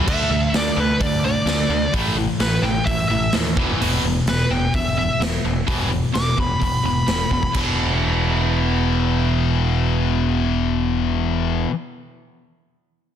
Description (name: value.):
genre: hard rock.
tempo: 128 BPM.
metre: 4/4.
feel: straight.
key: unclear.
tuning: A4 = 440 Hz.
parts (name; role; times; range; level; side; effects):
cranked stack guitar; riff; 0.0-11.7 s; E2 to D4; -25 LUFS; right 8 dB; overdrive.
tight distorted guitar; riff; 0.0-11.7 s; E2 to D4; -24 LUFS; left 8 dB; distortion.
bluesy overdriven lead guitar; melody; 0.1-7.5 s; B4 to D6; -24 LUFS; equal; distortion, analog delay.
growling picked electric bass; bass; 0.1-11.7 s; E1 to D#2; -23 LUFS; equal; overdrive.
raw garage drum kit; drums; 0.1-7.7 s; crash cymbal, hi-hat, kick drum, snare drum; -24 LUFS; equal; none.
room: light reverb, studio ambience.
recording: dense, heavily limited modern master.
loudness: -17 LUFS.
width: side -9 dB against mid.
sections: 0.1-7.5 A section; 7.5-11.3 B section.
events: lead electric guitar solo 0.1-7.5; drum fill 7.3.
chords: 0.1 D5; 1.9 A5; 3.6 E5.